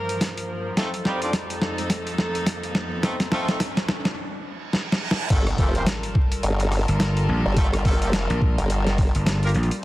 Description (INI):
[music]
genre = glitch hop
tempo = 106 BPM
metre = 4/4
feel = swing 59% on 16ths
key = G minor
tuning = A4 = 438 Hz
[part]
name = rich chamber string section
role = sustained chords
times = 0.0-9.8 s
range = F2 to Bb4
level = -30 LUFS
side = equal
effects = sidechain pumping
[part]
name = riser, reverse cymbal and impact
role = sound effects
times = 0.0-7.6 s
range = none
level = -34 LUFS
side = right 1 dB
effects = none
[part]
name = boom bap sampler-style drum kit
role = drums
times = 0.1-9.8 s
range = crash cymbal, hi-hat, rim click, snare drum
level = -26 LUFS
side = equal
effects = none
[part]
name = electronic kick drum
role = drums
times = 0.2-9.1 s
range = none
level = -21 LUFS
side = equal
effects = high-pass filter on kick
[part]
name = brilliant horn section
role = stabs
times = 0.8-9.5 s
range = G3 to D5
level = -31 LUFS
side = equal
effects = vintage 12-bit sampler grit, sidechain pumping, low-pass filter, dub echo
[part]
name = formant-sweep wobble bass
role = bass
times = 5.3-9.1 s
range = F1 to G1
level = -23 LUFS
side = equal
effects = chorus, tube saturation
[part]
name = gritty slap bass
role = bass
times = 6.9-9.7 s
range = G1 to Bb1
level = -21 LUFS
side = equal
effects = overdrive
[sound]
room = light reverb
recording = dense, heavily limited modern master, vinyl crackle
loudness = -20 LUFS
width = side -17 dB against mid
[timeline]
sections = 0.0-5.3 A section; 5.3-9.8 B section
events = build-up 0.0-5.3; drum fill 0.0-4.2, 4.7-5.3; riser 0.0-4.2; filter sweep on string section 0.0-5.3; break 4.2-5.3; reverse cymbal 4.2-5.3; drop 5.3-9.8; impact 5.3-7.6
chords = 0.0 Gm7; 0.8 F7; 5.3 Gm9